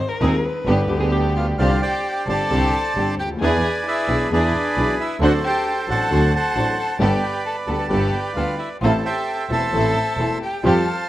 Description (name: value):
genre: tango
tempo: 133 BPM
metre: 4/4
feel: rubato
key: C major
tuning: A4 = 442 Hz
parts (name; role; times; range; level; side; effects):
- warm violin; second line; 0.0-11.1 s; D4 to C5; -26 LUFS; left 2 dB; none
- warm grand piano; accompaniment; 0.2-10.8 s; Eb1 to A4; -24 LUFS; left 2 dB; none
- rich studio string section; stabs; 0.2-10.8 s; B3 to C5; -24 LUFS; right 2 dB; none
- clear double bass; bass; 0.2-10.8 s; E1 to F2; -23 LUFS; right 1 dB; none
- hollow-body jazz guitar; second line; 0.9-1.6 s; G4 to Ab4; -29 LUFS; equal; none
- bandoneon; melody; 1.4-11.1 s; G#4 to B5; -23 LUFS; right 2 dB; none
room: light reverb, studio ambience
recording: rough home demo mix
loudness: -18 LUFS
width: side -14 dB against mid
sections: 0.0-1.6 A section; 1.6-11.1 B section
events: violin solo 0.0-1.6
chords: 0.0 Ab; 0.7 G; 1.6 Csus2; 3.4 E7; 5.2 D7; 7.0 Gadd9; 8.8 Am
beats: 0.21 0.66 1.12 | 1.58 2.04 2.50 2.95 | 3.40 3.85 4.30 4.75 | 5.20 5.65 6.09 6.54 | 6.99 7.44 7.89 8.35 | 8.82 9.28 9.73 10.18 | 10.64